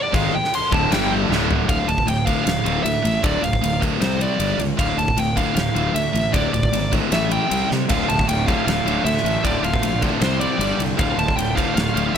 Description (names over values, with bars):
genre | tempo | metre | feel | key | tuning
hard rock | 155 BPM | 4/4 | straight | D minor | A4 = 440 Hz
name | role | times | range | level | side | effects
high-gain lead guitar | melody | 0.0-12.2 s | C5 to C6 | -23 LUFS | right 1 dB | distortion
high-gain distorted guitar | riff | 0.1-12.2 s | D2 to C4 | -26 LUFS | right 10 dB | distortion
overdriven semi-hollow guitar | riff | 0.1-12.2 s | D2 to C4 | -26 LUFS | left 12 dB | none
tight distorted guitar | riff | 0.1-1.7, 7.9-12.2 s | D2 to F4 | -27 LUFS | equal | distortion
fuzz fingered electric bass | bass | 0.1-12.2 s | D1 to C3 | -25 LUFS | equal | overdrive
huge arena drum kit | drums | 0.1-12.2 s | crash cymbal, kick drum, ride cymbal, snare drum, toms | -23 LUFS | equal | none
room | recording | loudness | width
little or no reverb | none | -17 LUFS | side -8 dB against mid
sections
0.0-1.7 A section; 1.7-12.2 B section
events
lead electric guitar solo 0.0-1.7; drum fill 1.3-1.7, 7.7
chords
0.0 D5; 0.9 G5; 1.3 D5; 4.0 C5; 4.4 G5; 4.8 Dm; 7.1 A5; 7.5 C5; 7.9 Dm; 10.2 C5; 10.6 G5; 11.0 Dm